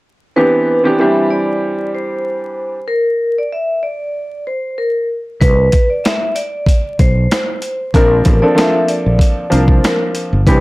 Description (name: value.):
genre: hip hop, boom-bap hip-hop.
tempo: 95 BPM.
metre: 4/4.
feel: swing 54% on 16ths.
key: C major.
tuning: A4 = 440 Hz.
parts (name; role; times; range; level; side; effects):
vibraphone with medium hard mallets; melody; 0.4-10.6 s; Bb4 to E5; -17 LUFS; equal; high-pass filter, low-pass filter.
warm upright piano; accompaniment; 0.4-2.8, 7.9-10.6 s; E3 to Bb4; -15 LUFS; equal; cassette tape, high-pass filter, low-pass filter.
fretless electric bass; bass; 5.4-10.6 s; G1 to C2; -13 LUFS; equal; none.
dusty soul sampler-style drum kit; drums; 5.4-10.6 s; hi-hat, kick drum, snare drum; -13 LUFS; equal; none.
room: light reverb.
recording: dry, gritty hardware recording, vinyl crackle.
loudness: -12 LUFS.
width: side -21 dB against mid.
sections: 0.4-10.5 A section.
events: none.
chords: 0.4 Cmaj7; 2.9 N.C.; 5.4 Bm; 7.9 Bbmaj7.